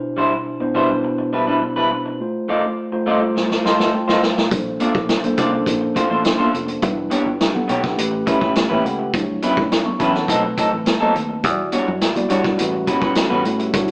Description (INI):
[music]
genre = lush 1970s-style soul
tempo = 104 BPM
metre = 4/4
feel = straight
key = unclear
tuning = A4 = 440 Hz
[part]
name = mellow tine electric piano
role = accompaniment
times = 0.0-13.9 s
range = B2 to C#6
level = -25 LUFS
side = equal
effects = none
[part]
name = electric guitar through a small old amp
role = riff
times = 0.2-13.6 s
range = F#3 to D5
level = -23 LUFS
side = equal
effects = none
[part]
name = vintage drum kit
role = drums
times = 3.4-13.9 s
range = hi-hat, kick drum, snare drum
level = -23 LUFS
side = equal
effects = none
[part]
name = fingered electric bass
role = bass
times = 4.5-13.9 s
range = E1 to A2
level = -29 LUFS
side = equal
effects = none
[part]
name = congas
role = percussion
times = 4.5-13.9 s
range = none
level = -31 LUFS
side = equal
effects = none
[sound]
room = moderate stone room reverb, RT60 1.1 s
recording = band playing live in one room, small speaker sound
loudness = -19 LUFS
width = mono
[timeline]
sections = 0.0-13.7 A section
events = drum fill 3.4-4.5; tine electric piano fill 3.4-4.5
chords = 0.0 Cmaj9; 2.2 F7; 4.5 Bbmaj9; 6.8 Em7; 8.0 A9; 9.1 Dmaj9; 10.3 B7b9; 11.4 Em9; 12.6 A13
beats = 0.46 1.04 1.62 | 2.20 2.78 3.36 3.93 | 4.51 5.09 5.67 6.25 | 6.82 7.40 7.98 8.56 | 9.13 9.71 10.29 10.86 | 11.44 12.02 12.59 13.17 | 13.74